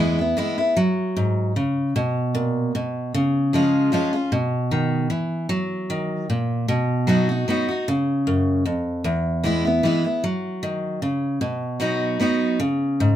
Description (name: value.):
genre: bluegrass.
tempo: 152 BPM.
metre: 3/4.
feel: swing 53% on 8ths.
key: B major.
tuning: A4 = 440 Hz.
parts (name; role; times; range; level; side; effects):
picked steel-string acoustic guitar; solo; 0.0-13.2 s; E2 to F#4; -20 LUFS; equal; none.
room: moderate small room reverb, RT60 0.5 s.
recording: band playing live in one room.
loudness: -20 LUFS.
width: side -11 dB against mid.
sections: 0.0-5.5 A section; 5.5-13.2 A section.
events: none.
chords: 0.0 E; 0.8 F#sus2; 1.9 N.C.; 3.1 C#; 4.3 B; 5.5 F#; 6.7 B; 7.9 C#; 9.1 E; 10.2 F#5; 11.4 B; 12.6 C#5.